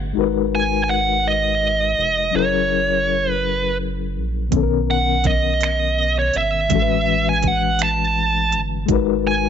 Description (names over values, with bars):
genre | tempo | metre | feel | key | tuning
slow six-eight R&B | 55 BPM (dotted quarters) | 6/8 | straight | B major | A4 = 440 Hz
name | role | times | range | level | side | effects
mellow reed electric piano | accompaniment | 0.0-9.5 s | A2 to B4 | -22 LUFS | left 14 dB | fast tremolo
rubbery square bass | bass | 0.0-9.5 s | E#1 to B1 | -24 LUFS | right 1 dB | none
high-gain lead guitar | melody | 0.6-9.5 s | C#5 to A5 | -19 LUFS | right 3 dB | distortion, slapback echo
smooth R&B drum kit | drums | 4.5-9.1 s | finger snaps, hi-hat, kick drum | -22 LUFS | right 6 dB | overdrive
room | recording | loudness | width
digital ambience | 1960s-style stereo with parts hard left and right, nothing above 7.7 kHz | -16 LUFS | side -8 dB against mid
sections
0.0-9.5 A section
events
none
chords
0.2 G#m9; 2.3 F#9; 4.5 Bmaj9; 6.7 Amaj13; 8.9 G#m9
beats
| 0.16 1.25 | 2.34 3.43 | 4.52 5.61 | 6.70 7.79 | 8.88